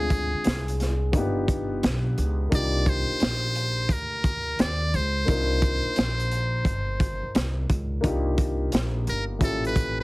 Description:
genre	hip hop, jazz-hop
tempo	87 BPM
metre	4/4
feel	swing 65% on 16ths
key	C minor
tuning	A4 = 440 Hz
part	trumpet with metal mute	melody	0.0-10.0 s	Ab4 to D5	-28 LUFS	equal	none
part	dark baby grand piano	accompaniment	0.0-10.0 s	Bb2 to Bb4	-30 LUFS	left 2 dB	none
part	upright bass	bass	0.0-10.0 s	G1 to Eb2	-27 LUFS	equal	none
part	crunchy breakbeat drum kit	drums	0.1-10.0 s	hi-hat, kick drum, snare drum	-26 LUFS	equal	none
room	little or no reverb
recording	heavily compressed radio sound, multiband compression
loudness	-22 LUFS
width	side -22 dB against mid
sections	0.0-8.0 A section; 8.0-10.0 B section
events	none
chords	0.0 Dm7b5; 1.1 G7b13; 2.5 Cm11; 9.4 A7b9

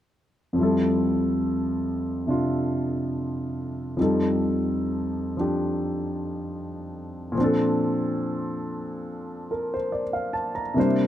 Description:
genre	jazz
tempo	71 BPM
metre	4/4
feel	swing 67% on 8ths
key	F major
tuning	A4 = 440 Hz
part	clear grand piano	accompaniment	0.5-11.1 s	F2 to Bb5	-23 LUFS	equal	none
room	light reverb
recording	close, detailed microphones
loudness	-23 LUFS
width	side -11 dB against mid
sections	0.6-11.1 A section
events	none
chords	0.6 Fmaj7; 4.0 F9; 7.4 Bbmaj7

